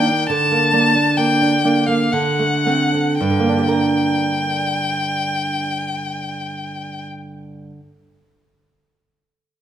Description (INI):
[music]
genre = romantic duo for violin and classical guitar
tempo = 53-73 BPM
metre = 3/4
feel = rubato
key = G minor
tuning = A4 = 440 Hz
[part]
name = rich violin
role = melody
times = 0.0-7.0 s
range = F5 to A5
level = -20 LUFS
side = left 2 dB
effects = none
[part]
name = nylon-string guitar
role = accompaniment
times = 0.0-8.0 s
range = G2 to Bb4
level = -19 LUFS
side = right 2 dB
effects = none
[sound]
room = wet recital hall reverb, RT60 1.6 s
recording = minimal, uncompressed stereo recording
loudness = -16 LUFS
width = side -10 dB against mid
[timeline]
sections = 0.0-3.2 A section; 3.2-6.3 B section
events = slowing down 0.0-3.2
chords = 0.3 Gmadd9/D; 2.1 D7; 3.2 Gm